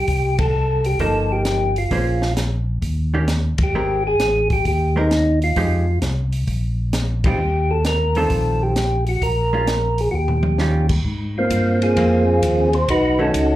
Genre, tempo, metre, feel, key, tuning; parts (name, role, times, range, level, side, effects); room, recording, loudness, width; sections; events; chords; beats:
soul jazz organ trio; 131 BPM; 4/4; swing 67% on 8ths; Eb major; A4 = 440 Hz
percussive tonewheel organ; melody; 0.0-13.6 s; Bb3 to C5; -19 LUFS; equal; slow rotary speaker, slapback echo
tonewheel organ; bass; 0.0-13.6 s; G1 to Ab2; -20 LUFS; equal; overdrive, chorus vibrato
compact cocktail drum kit; drums; 0.1-13.5 s; crash cymbal, hi-hat, kick drum, ride cymbal, snare drum, toms; -24 LUFS; equal
hollow-body jazz guitar; accompaniment; 1.0-13.3 s; Eb3 to C5; -24 LUFS; right 2 dB
light reverb; live gig heard through the venue's PA, club reverb; -16 LUFS; side -14 dB against mid
0.0-11.0 A section; 11.0-13.6 B section
band accent 0.3, 3.5, 7.2; drum fill 10.1-10.6
0.1 Cm7; 1.9 Bbm9; 2.8 Eb7; 3.7 Abmaj9; 5.6 Fm9; 6.5 Eb69; 9.2 Bbm7; 10.1 Eb9; 11.0 Ab69; 12.9 B9
| 0.08 0.54 0.99 1.45 | 1.91 2.37 2.82 3.28 | 3.74 4.19 4.65 5.11 | 5.56 6.02 6.48 6.93 | 7.39 7.85 8.31 8.76 | 9.22 9.68 10.13 10.59 | 11.05 11.50 11.96 12.42 | 12.87 13.33